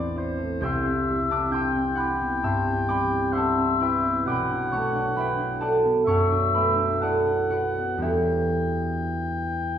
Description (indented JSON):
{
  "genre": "classical, impressionist duo for oboe and harp",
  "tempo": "56-67 BPM",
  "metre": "4/4",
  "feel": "rubato",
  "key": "unclear",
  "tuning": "A4 = 445 Hz",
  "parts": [
    { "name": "mellow oboe", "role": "melody", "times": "0.0-9.8 s", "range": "C5 to G5", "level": "-27 LUFS", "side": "left 3 dB", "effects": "none" },
    { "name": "concert harp", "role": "accompaniment", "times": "0.0-9.8 s", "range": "A1 to A6", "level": "-23 LUFS", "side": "right 1 dB", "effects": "none" }
  ],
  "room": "wet recital hall reverb, RT60 1.5 s",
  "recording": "heard from further back in the room",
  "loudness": "-22 LUFS",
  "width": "side -9 dB against mid",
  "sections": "0.0-9.8 A section",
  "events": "none",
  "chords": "0.0 Am6; 0.6 Cmaj7; 4.3 Bm7; 8.0 Em7",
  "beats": "| 0.63 1.53 2.43 3.33 | 4.26 5.16 6.06 7.00 | 8.02 9.07"
}